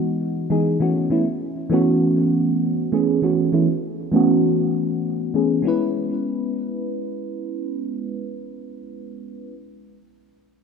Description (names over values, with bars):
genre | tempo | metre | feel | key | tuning
chillout | 99 BPM | 4/4 | swing 57% on 16ths | C# minor | A4 = 440 Hz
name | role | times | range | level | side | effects
mellow FM electric piano | accompaniment | 0.0-9.6 s | E3 to B4 | -19 LUFS | moving between left 5 dB and right 7 dB | chorus, phaser, auto-pan, cassette tape, low-pass filter, digital delay
room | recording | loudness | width
wet lush hall reverb, RT60 2.4 s | none | -19 LUFS | side -6 dB against mid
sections
0.0-5.7 A section; 5.7-8.1 B section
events
filter sweep on FM electric piano 0.0-5.7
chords
0.0 Emaj9; 0.8 B9sus4; 5.7 C#m7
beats
0.20 | 0.80 1.41 2.01 2.62 | 3.23 3.83 4.44 5.04 | 5.65 6.26 6.86 7.47